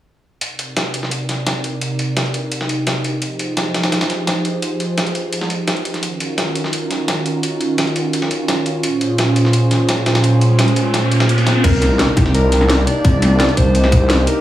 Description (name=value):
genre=liquid drum and bass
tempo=171 BPM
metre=4/4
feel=straight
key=unclear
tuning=A4 = 440 Hz
part: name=warm analog pad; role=sustained chords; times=0.4-14.4 s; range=Bb2 to D5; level=-18 LUFS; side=right 1 dB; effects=lush chorus, sidechain pumping
part: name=drum and bass drum kit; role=drums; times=0.4-14.3 s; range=crash cymbal, hi-hat, snare drum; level=-22 LUFS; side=equal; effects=none
part: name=dusty soul sampler-style drum kit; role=drums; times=0.4-14.4 s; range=hi-hat, snare drum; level=-21 LUFS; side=equal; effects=high-pass filter on hats, high-pass filter on snare, high-pass filter on room
part: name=riser and sub drop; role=sound effects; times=9.8-13.0 s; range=none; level=-22 LUFS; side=left 1 dB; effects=none
part: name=warm alto saxophone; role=melody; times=11.6-14.4 s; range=G4 to D5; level=-19 LUFS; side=equal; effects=dub echo
part: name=swelling detuned saw bass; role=bass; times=11.6-14.3 s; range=C2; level=-15 LUFS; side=equal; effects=tube saturation
part: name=electronic kick drum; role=drums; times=11.6-14.0 s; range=none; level=-14 LUFS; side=equal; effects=none
room=light reverb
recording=studio reverb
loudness=-14 LUFS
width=side -13 dB against mid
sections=0.4-11.6 A section; 11.6-14.4 B section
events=filter sweep on analog synth pad 0.4-11.6; riser 9.8-11.6; drop 11.6-14.4; impact 11.6-13.0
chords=0.4 Cm9; 3.2 Fm9; 6.0 Ebm9; 8.8 Bbm9; 11.6 Cm9